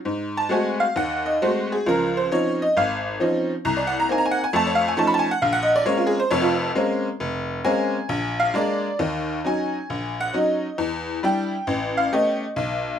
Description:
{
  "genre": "solo jazz",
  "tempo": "135 BPM",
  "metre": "4/4",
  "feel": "swing 67% on 8ths, rubato",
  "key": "Bb minor",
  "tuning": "A4 = 440 Hz",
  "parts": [
    { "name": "tack piano", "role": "solo", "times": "0.1-12.9 s", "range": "F1 to Cb6", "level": "-20 LUFS", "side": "equal", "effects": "none" }
  ],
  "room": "light reverb",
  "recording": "minimal, uncompressed stereo recording",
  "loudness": "-20 LUFS",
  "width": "side -9 dB against mid",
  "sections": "0.0-9.0 A section; 9.0-13.0 A section",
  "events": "honky-tonk piano solo 0.0-13.0",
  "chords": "0.1 Ab7b9; 1.9 Dbmaj9; 3.7 Cm9b5; 4.5 Faug7; 5.4 Bbm9; 8.1 Bb7; 9.0 Ebm7; 10.8 Em7; 11.7 A9"
}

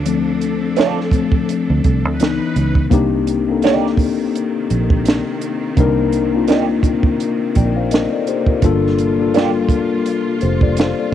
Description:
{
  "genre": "R&B, neo-soul",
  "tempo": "84 BPM",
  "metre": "4/4",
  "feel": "swing 58% on 16ths",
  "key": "C dorian",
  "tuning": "A4 = 440 Hz",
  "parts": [
    { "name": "clear studio string section", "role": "sustained chords", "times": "0.0-11.1 s", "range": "C3 to Cb5", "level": "-27 LUFS", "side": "right 2 dB", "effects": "cassette tape" },
    { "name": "fingered electric bass", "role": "bass", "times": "0.0-10.9 s", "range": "F1 to D2", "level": "-20 LUFS", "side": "right 2 dB", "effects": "none" },
    { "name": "mellow tine electric piano", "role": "accompaniment", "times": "0.1-11.1 s", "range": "Fb3 to G5", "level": "-17 LUFS", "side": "left 6 dB", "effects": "slow stereo tremolo, cassette tape" },
    { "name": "compact cocktail drum kit", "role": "drums", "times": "0.1-11.0 s", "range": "hi-hat, kick drum, snare drum", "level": "-17 LUFS", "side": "right 2 dB", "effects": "cassette tape" },
    { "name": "electric guitar through a small old amp", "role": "second line", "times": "0.8-9.5 s", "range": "Bb3 to D5", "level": "-20 LUFS", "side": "right 11 dB", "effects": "wah, harmonic tremolo, cassette tape" }
  ],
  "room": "little or no reverb",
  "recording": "home recording on cassette",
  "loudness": "-14 LUFS",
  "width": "side -10 dB against mid",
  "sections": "0.0-2.9 A section; 2.9-11.1 A section",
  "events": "tine electric piano solo 0.0-2.9",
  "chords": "0.0 Dm7; 2.2 Dbm9; 2.9 Cm9; 8.6 Gm7"
}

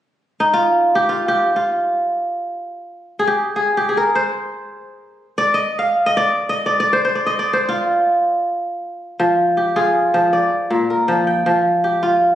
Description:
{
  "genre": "west african traditional",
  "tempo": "free time",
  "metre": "none",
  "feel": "none",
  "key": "F dorian",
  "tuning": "A4 = 439 Hz",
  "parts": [
    { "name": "kora", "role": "arpeggios", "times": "0.4-12.3 s", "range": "Bb2 to G5", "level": "-15 LUFS", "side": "equal", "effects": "none" }
  ],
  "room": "moderate recital hall reverb, RT60 1.6 s",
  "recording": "recorded on a phone in the room, studio reverb, compression",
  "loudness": "-15 LUFS",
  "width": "side -11 dB against mid",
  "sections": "0.1-9.2 A section; 9.2-12.3 B section",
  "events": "kora solo 0.1-9.2",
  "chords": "0.1 N.C.; 9.2 Fm; 10.3 Bb; 11.5 Fsus2"
}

